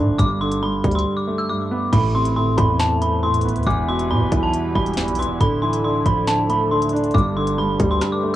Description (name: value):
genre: hip hop, drill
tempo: 138 BPM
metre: 4/4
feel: half-time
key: A minor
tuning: A4 = 440 Hz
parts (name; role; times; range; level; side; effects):
- dark concert grand piano; accompaniment; 0.0-8.4 s; E2 to D4; -21 LUFS; right 2 dB; cassette tape
- hard-hitting 808-style bass; bass; 0.0-8.0 s; D1 to B2; -23 LUFS; equal; none
- dark detuned synth bell; melody; 0.2-8.4 s; A5 to E6; -23 LUFS; left 1 dB; chorus, phaser, cassette tape
- drill drum kit; drums; 0.2-8.1 s; crash cymbal, hi-hat, kick drum, rim click, snare drum; -24 LUFS; equal; cassette tape
- sweeping resonant pad; sustained chords; 2.3-8.4 s; D3 to B4; -30 LUFS; left 2 dB; lush chorus, cassette tape
room: little or no reverb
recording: home recording on cassette, small room ambience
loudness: -17 LUFS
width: side -13 dB against mid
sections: 0.0-1.9 A section; 1.9-8.4 B section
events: break 1.1-1.9, 8.0-8.4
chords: 0.2 Gadd9; 1.9 Amadd9; 3.7 Em; 5.4 Dmadd9; 7.1 Gadd9